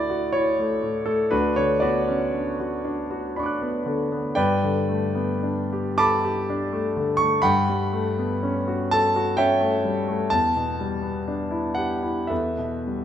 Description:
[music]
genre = classical, impressionist solo piano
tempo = 51-65 BPM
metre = 3/4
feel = rubato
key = unclear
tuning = A4 = 440 Hz
[part]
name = clear concert grand piano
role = solo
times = 0.0-13.0 s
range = D2 to F#6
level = -21 LUFS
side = equal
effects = none
[sound]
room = wet recital hall reverb, RT60 1.7 s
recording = none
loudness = -21 LUFS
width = side -10 dB against mid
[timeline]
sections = 0.0-13.0 A section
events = none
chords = 0.0 Dadd9; 1.3 Bmadd9/D; 4.4 Gadd9; 7.4 A13/G; 10.3 Em7; 12.3 Emadd11

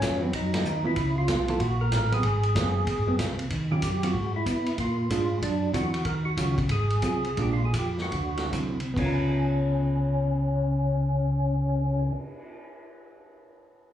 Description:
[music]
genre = soul jazz organ trio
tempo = 132-189 BPM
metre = 4/4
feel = swing 64% on 8ths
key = Db mixolydian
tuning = A4 = 440 Hz
[part]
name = percussive tonewheel organ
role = melody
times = 0.0-12.1 s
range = Db4 to Bb4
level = -30 LUFS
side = equal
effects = slow rotary speaker, overdrive, plate reverb, slapback echo
[part]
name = tonewheel organ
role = bass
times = 0.0-12.1 s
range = Gb1 to B2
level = -26 LUFS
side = equal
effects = chorus vibrato, slow rotary speaker
[part]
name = vintage drum kit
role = drums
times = 0.0-12.5 s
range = crash cymbal, cymbal swell, hi-hat, kick drum, ride cymbal, snare drum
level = -32 LUFS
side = equal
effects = none
[part]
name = hollow-body jazz guitar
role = accompaniment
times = 0.2-12.2 s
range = D3 to Bb4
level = -31 LUFS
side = right 3 dB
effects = plate reverb, slapback echo
[sound]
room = light reverb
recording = live gig heard through the venue's PA, club reverb, studio reverb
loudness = -24 LUFS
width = side -11 dB against mid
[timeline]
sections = 0.0-3.5 A section; 3.5-9.0 B section; 9.0-12.6 C section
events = band accent 0.5; slowing down 6.1-9.0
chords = 0.0 Abm7 (rootless); 1.0 Db7#9; 1.6 Gb; 2.2 Ab7#9; 3.5 Ebm9; 4.1 Eadd9/G#; 4.8 Bb7; 5.4 D9; 6.1 Ebm9; 6.7 Ab6; 7.4 Bb7; 8.1 D9; 9.0 Db6

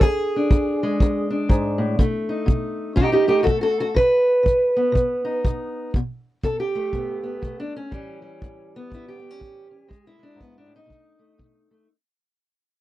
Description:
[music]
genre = acoustic country blues, solo or duo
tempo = 121 BPM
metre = 4/4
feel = swing 61% on 8ths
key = unclear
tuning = A4 = 440 Hz
[part]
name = fingerpicked steel-string acoustic guitar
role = melody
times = 0.0-11.9 s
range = E2 to B4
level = -20 LUFS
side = equal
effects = none
[part]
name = kick drum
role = drums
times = 0.0-11.5 s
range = none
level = -20 LUFS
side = equal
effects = none
[sound]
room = little or no reverb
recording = dry, close 1970s-style studio recording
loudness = -19 LUFS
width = side -15 dB against mid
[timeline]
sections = 0.0-11.9 A section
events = fade-out 0.0-11.9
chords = 0.0 E7; 2.0 B7; 7.9 A7; 9.9 E; 10.9 B7

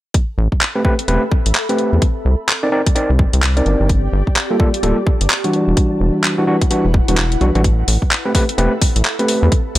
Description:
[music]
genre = UK garage, two-step garage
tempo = 128 BPM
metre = 4/4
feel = swing 61% on 16ths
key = A dorian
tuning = A4 = 441 Hz
[part]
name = electronic kick drum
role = drums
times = 0.1-9.6 s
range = none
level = -16 LUFS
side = equal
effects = none
[part]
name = garage drum kit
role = drums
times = 0.1-9.8 s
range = handclaps, hi-hat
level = -18 LUFS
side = equal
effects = none
[part]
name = ethereal airy pad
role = texture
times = 1.0-9.8 s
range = C4 to B5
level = -26 LUFS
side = left 1 dB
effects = ensemble chorus, built-in reverb, phaser, sidechain pumping
[part]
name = rubbery square bass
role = bass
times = 0.4-9.8 s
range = D1 to E2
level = -15 LUFS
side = equal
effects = none
[part]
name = overdriven tine electric piano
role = stabs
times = 0.8-9.5 s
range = E3 to D5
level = -18 LUFS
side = equal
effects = low-pass filter, digital delay
[sound]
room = little or no reverb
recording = none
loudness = -13 LUFS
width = side -15 dB against mid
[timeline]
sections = 0.1-9.8 A section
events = none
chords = 0.1 Am9; 2.0 Cm9; 3.9 Gm9; 5.5 Em9; 7.6 Am9

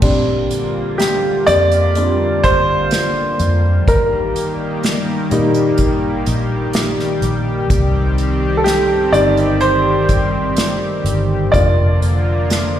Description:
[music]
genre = pop ballad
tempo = 63 BPM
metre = 4/4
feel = straight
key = Bb major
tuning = A4 = 440 Hz
[part]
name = warm baby grand piano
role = accompaniment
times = 0.0-12.8 s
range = G3 to D5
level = -16 LUFS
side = equal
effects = slapback echo
[part]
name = chorused pulse-width pad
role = sustained chords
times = 0.0-12.8 s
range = D3 to G4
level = -20 LUFS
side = left 1 dB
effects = none
[part]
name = vintage muted fingered electric bass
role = bass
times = 0.0-12.8 s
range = F1 to Bb2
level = -19 LUFS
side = equal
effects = none
[part]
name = unplugged drum kit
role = drums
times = 0.0-12.7 s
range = crash cymbal, hi-hat, kick drum, snare drum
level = -20 LUFS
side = equal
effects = none
[sound]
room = light reverb, small room ambience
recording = live gig heard through the venue's PA, recital hall reverb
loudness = -13 LUFS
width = side -10 dB against mid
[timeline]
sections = 0.0-12.8 A section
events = grand piano solo 0.0-12.8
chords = 0.0 Bb6; 3.9 Eb/Bb; 7.7 Cm; 11.5 Bb/F

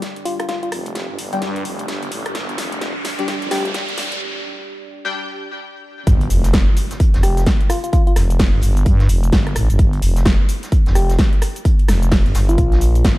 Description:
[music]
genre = bass house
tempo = 129 BPM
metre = 4/4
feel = swing 61% on 16ths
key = unclear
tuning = A4 = 437 Hz
[part]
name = big-room dance drum kit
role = drums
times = 0.0-13.2 s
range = hi-hat, rim click, shaker, snare drum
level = -24 LUFS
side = equal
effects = high-pass filter on hats, high-pass filter on snare, high-pass filter on perc, high-pass filter on room
[part]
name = riser and impact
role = sound effects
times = 0.6-7.9 s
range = none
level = -28 LUFS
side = equal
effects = none
[part]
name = deep dark ambient pad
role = texture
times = 0.0-4.2 s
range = D4 to D5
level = -33 LUFS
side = right 1 dB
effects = chorus, built-in reverb, sidechain pumping
[part]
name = soft struck synth lead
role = melody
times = 0.3-0.7, 3.5-3.7, 7.2-8.1, 11.0-13.1 s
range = F4 to G4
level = -26 LUFS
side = left 2 dB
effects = chorus, cassette tape, tape echo
[part]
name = growling FM bass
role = bass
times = 0.7-13.2 s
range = F1 to G2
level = -18 LUFS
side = equal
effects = overdrive, sidechain pumping, high-pass filter
[part]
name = band-passed chord stab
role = stabs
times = 1.3-6.1 s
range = G3 to G5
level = -27 LUFS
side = left 3 dB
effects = phaser, ensemble chorus, cassette tape, sidechain pumping, tape echo
[part]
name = electronic kick drum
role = drums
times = 6.1-13.2 s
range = none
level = -15 LUFS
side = equal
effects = none
[part]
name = vintage brush drum kit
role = drums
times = 6.1-13.2 s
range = hi-hat, snare drum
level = -34 LUFS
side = equal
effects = sidechain pumping on hats, high-pass filter on hats, high-pass filter on snare, high-pass filter on room
[sound]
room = digital ambience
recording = dark, warm production, high-pass filter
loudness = -15 LUFS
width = side -18 dB against mid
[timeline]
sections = 0.0-6.1 A section; 6.1-13.2 B section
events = build-up 0.0-6.1; drum fill 0.0-4.2; filter sweep on synth stab 0.0-6.1; filter sweep 0.0-6.1; riser 0.6-4.2; break 4.2-6.1; drop 6.1-13.2; impact 6.1-7.9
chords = 0.0 G5; 6.1 Fsus2

